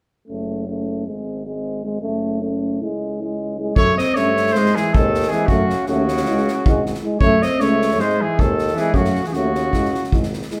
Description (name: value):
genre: balkan folk, Balkan brass band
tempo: 312 BPM (eighths)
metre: 9/8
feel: straight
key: F# dorian sharp4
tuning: A4 = 440 Hz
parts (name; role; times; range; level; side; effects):
- dark euphonium; accompaniment; 0.3-10.6 s; B#3 to E4; -30 LUFS; equal; none
- warm euphonium; accompaniment; 0.3-10.6 s; G#3 to A3; -27 LUFS; equal; none
- warm tuba; bass; 0.3-10.4 s; F#1 to G#2; -28 LUFS; equal; none
- warm trumpet; melody; 3.8-10.2 s; F#4 to D#5; -24 LUFS; equal; none
- mellow alto saxophone; second line; 3.8-10.2 s; C#3 to B#3; -24 LUFS; equal; none
- unplugged drum kit; percussion; 3.8-10.5 s; kick drum, snare drum; -24 LUFS; equal; none
room: wet large studio reverb, RT60 1.1 s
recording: band playing live in one room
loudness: -19 LUFS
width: mono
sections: 0.3-3.8 A section; 3.8-10.6 B section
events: none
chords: 0.3 F#m; 1.1 G#; 2.0 F#m; 2.8 C#m; 3.8 F#m; 4.5 G#; 5.5 F#m; 6.2 C#m; 7.2 F#m; 8.0 G#; 8.9 F#m; 9.7 C#m